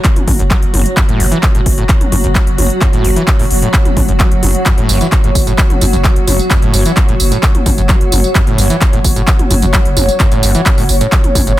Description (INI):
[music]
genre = driving peak-time techno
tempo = 130 BPM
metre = 4/4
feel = straight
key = F# minor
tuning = A4 = 440 Hz
[part]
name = swarming drone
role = drone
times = 0.0-11.6 s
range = F#3 to F#4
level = -22 LUFS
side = equal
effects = built-in reverb, sidechain pumping
[part]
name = electronic kick drum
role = drums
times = 0.0-11.4 s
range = none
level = -12 LUFS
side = equal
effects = none
[part]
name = techno drum kit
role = drums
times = 0.0-11.6 s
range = handclaps, hi-hat, tambourine, toms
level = -17 LUFS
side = equal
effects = none
[part]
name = granular cloud pad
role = texture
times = 0.0-11.6 s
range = F#4 to F#5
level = -20 LUFS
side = right 1 dB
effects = built-in reverb, sidechain pumping
[part]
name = growling 808-style bass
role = bass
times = 0.2-11.6 s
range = F#1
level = -17 LUFS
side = equal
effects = overdrive, sidechain pumping, low-pass filter
[part]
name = screaming distorted acid line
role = riff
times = 0.3-11.5 s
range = F#1 to F#3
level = -18 LUFS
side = equal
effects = distortion, chorus, sidechain pumping, tape echo
[sound]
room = light reverb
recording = dense, heavily limited modern master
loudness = -9 LUFS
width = side -15 dB against mid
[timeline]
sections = 0.0-11.6 A section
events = none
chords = 0.0 F#m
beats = 0.04 0.51 | 0.97 1.43 1.89 2.35 | 2.81 3.28 3.74 4.20 | 4.66 5.12 5.58 6.04 | 6.51 6.97 7.43 7.89 | 8.35 8.81 9.28 9.74 | 10.20 10.66 11.12 11.58